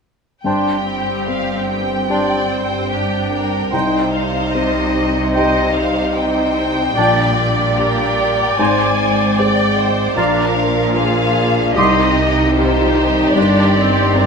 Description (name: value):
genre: cinematic, emotional film score for orchestra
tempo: 74 BPM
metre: 4/4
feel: rubato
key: unclear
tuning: A4 = 440 Hz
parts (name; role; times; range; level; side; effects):
- warm symphonic violin section; melody; 0.4-14.3 s; C5 to Ab5; -22 LUFS; left 2 dB; none
- felt-muted upright piano; accompaniment; 0.4-14.3 s; Bb1 to Eb5; -22 LUFS; left 3 dB; none
- concert flute; second line; 0.5-14.3 s; G5 to C6; -23 LUFS; equal; none
- rich studio violin section; second line; 0.5-14.3 s; G4 to D5; -23 LUFS; right 1 dB; none
- warm clarinet; second line; 0.5-14.3 s; D4 to G4; -24 LUFS; equal; none
- warm oboe; second line; 0.5-14.3 s; C5 to Eb5; -23 LUFS; right 3 dB; none
- warm symphonic viola section; accompaniment; 0.5-14.3 s; C4 to D5; -22 LUFS; right 1 dB; none
- mellow French horn section; sustained chords; 0.5-14.3 s; Eb3 to Eb4; -21 LUFS; left 1 dB; none
- rich symphonic cello section; bass; 0.5-14.3 s; G2 to C3; -23 LUFS; right 1 dB; none
- rich symphonic double bass section; bass; 0.5-14.3 s; G1 to C2; -24 LUFS; right 2 dB; none
room: wet stone room reverb, RT60 1.1 s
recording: none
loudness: -13 LUFS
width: side -5 dB against mid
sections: 0.5-14.3 A section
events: none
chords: 0.5 Gsus4; 3.7 Cm; 7.0 Gm/Bb; 8.6 Ab; 10.2 Bb; 11.8 Cm; 13.4 Gsus4